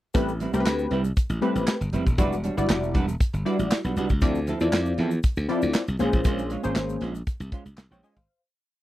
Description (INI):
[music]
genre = early-eighties boogie funk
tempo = 118 BPM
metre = 4/4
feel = straight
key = A minor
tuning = A4 = 440 Hz
[part]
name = funky polysynth comp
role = accompaniment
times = 0.1-8.4 s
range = G3 to Ab5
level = -26 LUFS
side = left 2 dB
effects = chorus
[part]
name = semi-hollow electric guitar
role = riff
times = 0.1-8.2 s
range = F3 to C#5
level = -30 LUFS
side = right 4 dB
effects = wide subtle chorus
[part]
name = glassy slap bass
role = bass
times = 0.1-8.3 s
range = D#1 to F2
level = -27 LUFS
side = equal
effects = none
[part]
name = modern studio drum kit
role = drums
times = 0.1-8.3 s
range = handclaps, hi-hat, kick drum, snare drum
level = -23 LUFS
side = equal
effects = none
[part]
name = egg shaker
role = percussion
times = 0.1-8.3 s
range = none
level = -50 LUFS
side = left 12 dB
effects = none
[sound]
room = little or no reverb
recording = dry, close 1970s-style studio recording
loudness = -22 LUFS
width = side -15 dB against mid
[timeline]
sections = 0.1-8.3 verse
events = fade-out 6.3-8.3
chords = 0.1 Am9; 2.2 Em9; 4.2 Dm9; 6.0 Bbm9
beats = | 0.15 0.66 1.17 1.68 | 2.18 2.69 3.20 3.71 | 4.22 4.73 5.24 5.74 | 6.25 6.76 7.27 7.78